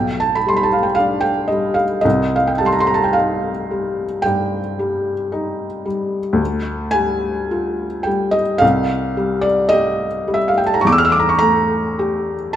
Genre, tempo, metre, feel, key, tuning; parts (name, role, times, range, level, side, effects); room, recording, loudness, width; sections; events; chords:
classical, romantic nocturne for solo piano; 54 BPM; 4/4; rubato; A4 = 442 Hz
felt-muted upright piano; solo; 0.0-12.6 s; B1 to F6; -15 LUFS; equal
moderate recital hall reverb, RT60 1.6 s; -15 LUFS; side -10 dB against mid
0.0-12.6 A section
0.0 G/B; 2.0 Cm; 6.4 G5/D; 8.6 C5; 10.8 A5/E